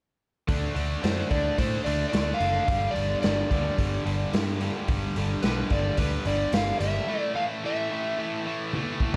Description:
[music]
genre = blues rock power trio and southern rock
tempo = 109 BPM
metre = 4/4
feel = straight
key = unclear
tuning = A4 = 440 Hz
[part]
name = cranked stack guitar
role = riff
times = 0.5-9.2 s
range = G2 to D4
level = -32 LUFS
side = equal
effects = overdrive
[part]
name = picked electric bass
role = bass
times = 0.5-7.0 s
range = F#1 to A2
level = -32 LUFS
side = equal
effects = none
[part]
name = raw garage drum kit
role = drums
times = 0.5-9.2 s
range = hi-hat, kick drum, snare drum, toms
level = -31 LUFS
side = equal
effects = none
[part]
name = overdriven slide guitar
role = melody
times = 1.0-8.7 s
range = B4 to F5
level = -31 LUFS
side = equal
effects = plate reverb
[sound]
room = moderate club reverb, RT60 0.5 s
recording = none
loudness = -27 LUFS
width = mono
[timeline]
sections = 0.5-9.2 A section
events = break 7.1-9.2; drum fill 8.7-9.2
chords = 0.5 D; 2.7 G5; 7.1 A5

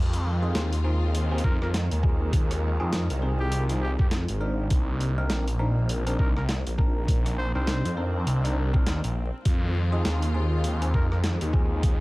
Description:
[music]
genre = glitch hop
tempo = 101 BPM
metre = 4/4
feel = swing 59% on 16ths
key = unclear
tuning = A4 = 439 Hz
[part]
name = clear symphonic string section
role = sustained chords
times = 0.0-12.0 s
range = Eb3 to F4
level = -38 LUFS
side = left 1 dB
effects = sidechain pumping
[part]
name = phased detuned saw bass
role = bass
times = 0.0-12.0 s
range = Ab1 to F2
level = -25 LUFS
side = equal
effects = phaser
[part]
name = boom bap sampler-style drum kit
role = drums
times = 0.1-12.0 s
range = hi-hat, rim click, snare drum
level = -33 LUFS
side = equal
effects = none
[part]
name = bell-like tine electric piano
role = stabs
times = 0.4-12.0 s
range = C4 to Bb4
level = -33 LUFS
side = equal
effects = phaser, sidechain pumping, digital delay
[part]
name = warm trumpet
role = melody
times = 1.4-11.2 s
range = G4 to C5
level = -37 LUFS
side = equal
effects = digital delay
[part]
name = electronic kick drum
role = drums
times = 1.4-12.0 s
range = none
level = -23 LUFS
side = equal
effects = none
[sound]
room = digital ambience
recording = vinyl crackle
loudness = -23 LUFS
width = side -21 dB against mid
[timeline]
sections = 0.0-12.0 A section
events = none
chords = 0.0 Fm7; 4.7 Cm9; 9.5 Fm7

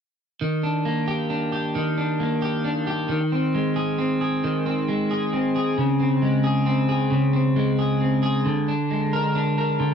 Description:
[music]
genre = pop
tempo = 45 BPM (dotted quarters)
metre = 6/8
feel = straight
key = Eb major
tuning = A4 = 440 Hz
[part]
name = electric guitar at the edge of break-up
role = accompaniment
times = 0.4-9.9 s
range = Db3 to Bb4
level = -20 LUFS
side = equal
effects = double-tracked left and right
[sound]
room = light reverb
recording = dry, close 1970s-style studio recording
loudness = -20 LUFS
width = side -7 dB against mid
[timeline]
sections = 0.4-9.9 A section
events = none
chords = 0.4 Ebmaj7; 3.1 Ab/Eb; 5.8 Db5; 8.5 Bb7/D

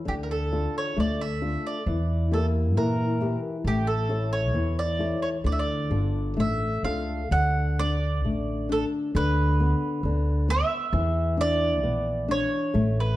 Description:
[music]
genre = fado-style ballad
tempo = 66 BPM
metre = 2/4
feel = rubato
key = D harmonic minor, D major from 7.3 s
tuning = A4 = 440 Hz
[part]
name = flamenco guitar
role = accompaniment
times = 0.0-13.2 s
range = D3 to C#5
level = -29 LUFS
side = left 3 dB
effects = none
[part]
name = mandolin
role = melody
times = 0.1-13.2 s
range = G4 to F#5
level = -29 LUFS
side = right 2 dB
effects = none
[part]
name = upright bass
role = bass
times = 0.1-13.2 s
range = G1 to Bb2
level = -26 LUFS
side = equal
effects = none
[sound]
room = light reverb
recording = dark, warm production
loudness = -23 LUFS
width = side -15 dB against mid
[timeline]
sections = 0.0-7.3 A section; 7.3-13.2 B section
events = none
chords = 0.1 Dm; 1.8 Edim; 3.6 A; 5.4 Dm; 7.3 D5; 9.1 Bmadd11/D; 10.9 E5

